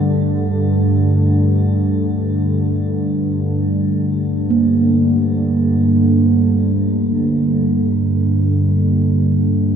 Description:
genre	world meditative, free-time meditation music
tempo	free time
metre	none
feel	none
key	G minor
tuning	A4 = 440 Hz
part	deep dark ambient pad	drone	0.0-9.8 s	G2 to D3	-15 LUFS	equal	chorus, built-in reverb
part	quartz singing bowl	texture	0.0-9.8 s	A3 to Bb3	-19 LUFS	right 2 dB	shimmer reverb
room	wet huge ambient reverb, RT60 5.5 s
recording	cassette tape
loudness	-14 LUFS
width	side -8 dB against mid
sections	0.0-4.0 A section; 4.0-9.8 A section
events	none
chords	none

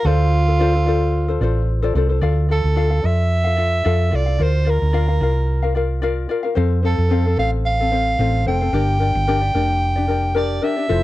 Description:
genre	acoustic pop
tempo	111 BPM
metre	4/4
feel	swing 55% on 16ths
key	unclear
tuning	A4 = 440 Hz
part	breathy soprano saxophone	melody	0.0-11.0 s	F4 to G5	-22 LUFS	right 2 dB	none
part	ukulele	accompaniment	0.0-11.0 s	C4 to F5	-23 LUFS	left 5 dB	none
part	hollow-body short-scale fingered electric bass	bass	0.0-11.0 s	F1 to F2	-18 LUFS	equal	none
room	little or no reverb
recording	dry, close 1970s-style studio recording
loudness	-16 LUFS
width	side -16 dB against mid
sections	0.0-2.2 A section; 2.2-10.9 B section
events	none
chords	0.1 Dm7; 2.2 Dm; 4.4 Bb; 6.6 F; 8.7 Gm

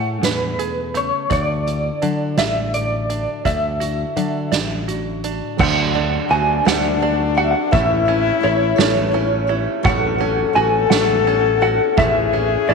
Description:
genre	indie folk with a building arrangement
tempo	56 BPM (dotted quarters)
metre	6/8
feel	straight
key	unclear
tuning	A4 = 444 Hz
part	electric guitar through a small old amp	melody	0.0-12.7 s	B4 to G#5	-20 LUFS	right 1 dB	tremolo
part	fingerpicked steel-string acoustic guitar	accompaniment	0.0-7.7 s	A2 to A4	-29 LUFS	left 12 dB	none
part	open-back banjo	arpeggios	0.0-12.7 s	A3 to D5	-26 LUFS	right 11 dB	none
part	picked electric bass	bass	0.0-12.7 s	A1 to D3	-24 LUFS	equal	none
part	soft-mallet drum kit	drums	0.2-12.7 s	crash cymbal, hi-hat, kick drum, ride cymbal, snare drum	-23 LUFS	right 5 dB	none
part	clear French horn	second line	5.6-12.7 s	D4 to A4	-20 LUFS	left 16 dB	none
part	dark upright piano	accompaniment	5.6-12.7 s	A1 to E5	-29 LUFS	right 12 dB	none
part	picked twelve-string acoustic guitar	accompaniment	5.6-12.7 s	A2 to A4	-29 LUFS	left 13 dB	none
room	light reverb, studio ambience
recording	1960s-style stereo with parts hard left and right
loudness	-16 LUFS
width	side -4 dB against mid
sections	0.0-5.6 A section; 5.6-12.7 B section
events	none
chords	0.0 Amaj7; 1.3 Dadd9; 5.6 D; 7.7 A; 9.9 F#m/A; 12.0 A

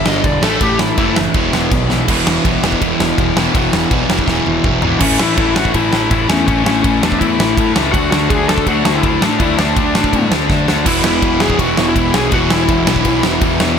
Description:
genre	punk rock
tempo	164 BPM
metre	4/4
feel	straight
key	unclear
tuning	A4 = 440 Hz
part	lead guitar through a small cranked amp	melody	0.0-1.2, 5.0-13.2 s	C#4 to D#5	-18 LUFS	left 2 dB	overdrive, digital delay
part	overdriven electric guitar	riff	0.0-13.8 s	E2 to D4	-19 LUFS	equal	none
part	sludgy distorted guitar	riff	0.0-13.8 s	E2 to D4	-20 LUFS	left 12 dB	overdrive
part	sludgy distorted guitar	riff	0.0-5.0, 10.8-13.8 s	E2 to A3	-20 LUFS	right 12 dB	overdrive
part	fuzz picked electric bass	bass	0.1-13.8 s	E1 to D3	-21 LUFS	equal	overdrive
part	big rock drum kit	drums	0.1-13.7 s	crash cymbal, kick drum, ride cymbal, snare drum, toms	-17 LUFS	right 1 dB	none
room	little or no reverb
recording	none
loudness	-12 LUFS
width	side -7 dB against mid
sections	0.0-2.1 A section; 2.1-5.0 B section; 5.0-13.8 C section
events	lead electric guitar solo 0.0-2.1; drum fill 1.9, 4.3-5.0, 10.5-10.9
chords	0.4 A5; 1.3 E5; 5.0 A; 7.9 D5; 10.9 E5

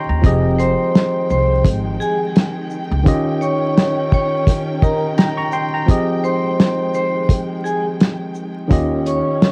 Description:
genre	hip hop, boom-bap hip-hop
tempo	85 BPM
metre	4/4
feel	swing 57% on 16ths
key	F minor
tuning	A4 = 439 Hz
part	tine electric piano	accompaniment	0.0-9.5 s	Eb3 to Db6	-23 LUFS	equal	cassette tape, high-pass filter, low-pass filter
part	warm studio string section	sustained chords	0.0-9.5 s	Eb3 to G5	-31 LUFS	equal	high-pass filter, low-pass filter
part	upright bass	bass	0.1-3.0, 8.7-9.2 s	F1 to Eb2	-22 LUFS	equal	none
part	cloth-damped thuddy drum kit	drums	0.2-9.5 s	hi-hat, kick drum, shaker, snare drum	-16 LUFS	equal	cassette tape
part	vibraphone with hard mallets	melody	0.6-9.5 s	Ab4 to Db6	-23 LUFS	equal	high-pass filter, low-pass filter, cassette tape, tape echo
room	light reverb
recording	home recording on cassette, vinyl crackle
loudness	-17 LUFS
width	mono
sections	0.0-9.5 A section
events	none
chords	0.2 Fm9; 3.1 Eb7; 5.9 Fm9; 8.7 Eb7

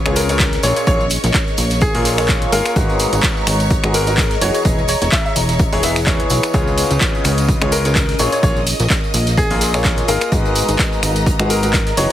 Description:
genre	piano house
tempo	127 BPM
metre	4/4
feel	swing 55% on 16ths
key	unclear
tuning	A4 = 442 Hz
part	string machine, violins	sustained chords	0.0-12.1 s	Db5 to Eb6	-28 LUFS	left 1 dB	ensemble chorus, sidechain pumping
part	clear upright piano	riff	0.0-12.1 s	Ab2 to F5	-21 LUFS	left 2 dB	sidechain pumping, ping-pong delay
part	ethereal airy pad	texture	0.0-12.1 s	Db4 to Bb5	-25 LUFS	equal	ensemble chorus, built-in reverb, phaser, sidechain pumping
part	plucky analog bass	bass	0.1-12.1 s	E1 to Db2	-20 LUFS	equal	sidechain pumping
part	punchy analog drum machine	drums	0.1-12.1 s	finger snaps, handclaps, hi-hat, tambourine	-21 LUFS	equal	none
part	bright grand piano	melody	0.2-12.1 s	Ab4 to E5	-23 LUFS	equal	ping-pong delay
part	loose indie drum kit	drums	0.2-12.1 s	hi-hat, snare drum	-31 LUFS	left 3 dB	none
part	tambourine	percussion	0.2-12.1 s	none	-30 LUFS	right 4 dB	none
part	electronic kick drum	drums	0.4-11.8 s	none	-18 LUFS	equal	none
room	light reverb, small room ambience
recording	heavily compressed radio sound, multiband compression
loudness	-13 LUFS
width	side -12 dB against mid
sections	0.0-12.1 A section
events	none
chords	0.0 Db7; 0.6 Bbm7; 2.8 Abm7; 4.7 Emaj7; 6.5 Db7; 8.2 Bbm7; 10.3 Abm7

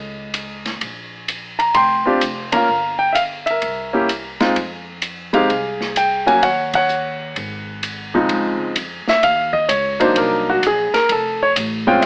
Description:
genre	jazz piano trio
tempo	128 BPM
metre	4/4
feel	swing 67% on 8ths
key	F minor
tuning	A4 = 440 Hz
part	warm baby grand piano	melody	0.0-12.1 s	Db2 to C6	-16 LUFS	equal	none
part	upright bass	bass	0.0-12.1 s	F1 to F2	-32 LUFS	equal	none
part	open jazz drum kit	drums	0.3-12.1 s	hi-hat, kick drum, ride cymbal, snare drum	-25 LUFS	equal	none
room	moderate club reverb, RT60 0.9 s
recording	AM radio sound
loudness	-16 LUFS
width	side -35 dB against mid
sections	0.0-8.3 A section; 8.3-12.1 B section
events	band accent 2.4, 6.7; grand piano solo 8.3-12.1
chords	0.0 F7b13 (rootless); 0.8 Bbsus2; 2.7 Gm7; 3.6 C7; 4.6 Fmadd9; 6.4 Ebm7; 7.4 Ab7(no3); 8.3 Dbmaj9; 10.2 Cm7b5; 11.1 F

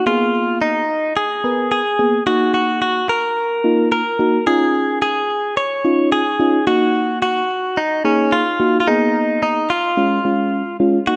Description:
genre	pop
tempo	109 BPM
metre	4/4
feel	straight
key	F# major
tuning	A4 = 440 Hz
part	direct-recorded clean electric guitar	melody	0.0-11.2 s	C#4 to C#5	-20 LUFS	equal	tape echo
part	mellow FM electric piano	accompaniment	0.1-11.2 s	G#3 to B4	-20 LUFS	equal	chorus
room	moderate lush hall reverb, RT60 2.5 s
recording	dark, warm production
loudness	-17 LUFS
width	mono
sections	0.0-11.1 A section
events	none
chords	0.1 G#madd9; 2.3 F#6; 4.5 C#add9; 6.7 F#6; 8.9 G#madd9; 10.0 C#

